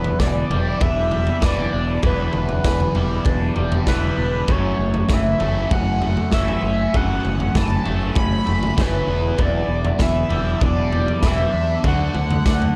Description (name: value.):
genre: indie rock.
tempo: 98 BPM.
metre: 4/4.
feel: straight.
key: E dorian.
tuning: A4 = 440 Hz.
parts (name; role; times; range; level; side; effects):
pulse-width lead; melody; 0.0-12.8 s; B4 to B5; -27 LUFS; equal; chorus, analog delay.
biting overdriven guitar; riff; 0.0-12.8 s; E2 to D4; -30 LUFS; equal; phaser, analog delay.
fuzz guitar; riff; 0.0-12.7 s; E3 to F#4; -28 LUFS; equal; distortion, subtle chorus, analog delay.
growling fingered electric bass; bass; 0.0-12.7 s; E1 to E2; -26 LUFS; equal; overdrive.
raw garage drum kit; drums; 0.0-12.8 s; kick drum, snare drum, toms; -24 LUFS; equal; none.
room: light reverb, studio ambience.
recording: echo-heavy mix.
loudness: -20 LUFS.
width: mono.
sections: 0.0-12.8 A section.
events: none.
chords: 0.0 Em7; 4.5 F#m7; 9.1 Em7; 11.8 D.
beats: 0.20 0.81 1.42 | 2.03 2.64 3.25 3.87 | 4.48 5.09 5.70 6.32 | 6.93 7.54 8.15 8.77 | 9.38 9.99 10.61 11.22 | 11.84 12.45.